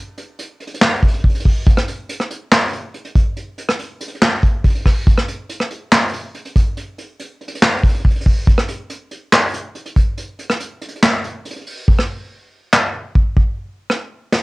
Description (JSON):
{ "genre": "hip hop", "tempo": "141 BPM", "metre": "4/4", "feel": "half-time", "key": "none", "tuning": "none", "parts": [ { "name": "vintage brush drum kit", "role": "drums", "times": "0.2-14.4 s", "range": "handclaps, hi-hat, kick drum, rim click, snare drum", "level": "-14 LUFS", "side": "equal", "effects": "cassette tape" } ], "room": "light reverb", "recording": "home recording on cassette", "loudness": "-15 LUFS", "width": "side -23 dB against mid", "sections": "0.0-11.9 A section; 11.9-14.4 B section", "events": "kick muted 11.0-11.9; hi-hats muted 11.9-14.4", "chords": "none" }